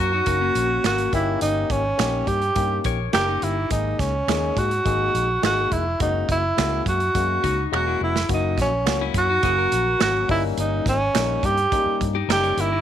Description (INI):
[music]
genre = uptempo 1960s-style soul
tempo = 105 BPM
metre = 4/4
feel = straight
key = F# mixolydian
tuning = A4 = 440 Hz
[part]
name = breathy tenor saxophone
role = melody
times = 0.0-12.8 s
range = C#4 to G4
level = -22 LUFS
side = right 2 dB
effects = none
[part]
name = barky tine electric piano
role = accompaniment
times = 0.0-12.7 s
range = E3 to A#4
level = -28 LUFS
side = left 13 dB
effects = none
[part]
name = clean electric guitar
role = riff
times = 0.0-3.7, 7.4-12.8 s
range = A#3 to C#5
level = -29 LUFS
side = left 14 dB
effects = none
[part]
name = vintage muted fingered electric bass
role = bass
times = 0.0-12.8 s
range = E1 to G#2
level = -26 LUFS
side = equal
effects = none
[part]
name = natural country drum kit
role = drums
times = 0.3-12.7 s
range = hi-hat, kick drum, snare drum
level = -27 LUFS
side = right 3 dB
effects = none
[part]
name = finger snaps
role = percussion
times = 0.9-12.4 s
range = none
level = -31 LUFS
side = right 13 dB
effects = none
[sound]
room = light reverb, small room reverb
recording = 1960s-style stereo with parts hard left and right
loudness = -19 LUFS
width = side -10 dB against mid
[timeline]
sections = 0.0-8.3 A section; 8.3-12.8 A section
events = drum fill 7.7-8.3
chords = 0.0 F#; 1.1 D#7/G; 3.7 G#sus2; 6.0 F#add9; 8.3 F#; 10.3 D#7/G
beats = 0.27 0.84 | 1.42 1.99 2.56 3.14 | 3.71 4.28 4.86 5.43 | 6.00 6.57 7.15 7.72 | 8.29 8.86 9.43 10.00 | 10.57 11.15 11.72 12.29